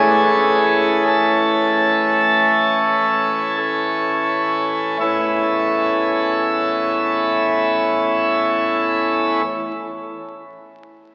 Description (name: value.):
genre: classical, chorale-style piece for pipe organ.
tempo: free time.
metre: none.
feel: none.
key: A major.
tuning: A4 = 441 Hz.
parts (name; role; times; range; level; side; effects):
pipe organ, plenum; solo; 0.0-9.4 s; A1 to A4; -18 LUFS; equal; none.
room: wet church reverb, RT60 3.6 s.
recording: recorded in a church or concert hall, vinyl crackle, AM radio sound.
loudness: -18 LUFS.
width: mono.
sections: 0.0-5.0 A section; 5.0-10.6 B section.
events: slowing down 0.0-5.0.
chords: 0.0 A.